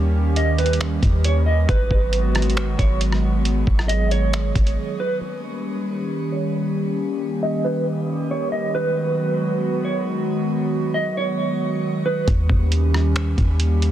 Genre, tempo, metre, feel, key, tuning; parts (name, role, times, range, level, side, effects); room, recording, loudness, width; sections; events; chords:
hip hop, atmospheric cloud-rap; 136 BPM; 4/4; half-time; A4 = 444 Hz
hollow soft pad; sustained chords; 0.0-13.9 s; D#3 to G#4; -24 LUFS; right 1 dB; chorus, sidechain pumping, low-pass filter
clean 808-style bass; bass; 0.0-4.8, 12.3-13.9 s; G#1 to D#2; -19 LUFS; equal
mellow electric guitar; melody; 0.4-12.3 s; A#4 to D#5; -26 LUFS; right 2 dB; tremolo, low-pass filter, digital delay
lo-fi sampler-style drum kit; drums; 0.4-4.8, 12.3-13.9 s; finger snaps, hi-hat, kick drum, rim click; -23 LUFS; equal; soft clipping on snare
digital ambience; dense, heavily limited modern master; -18 LUFS; side -11 dB against mid
0.0-5.2 A section; 5.2-12.3 B section; 12.3-13.9 C section
break 4.8-5.2; filter sweep 5.2-12.3
0.0 D#7; 1.7 G#m7; 5.2 D#7; 8.7 G#m7; 12.3 D#7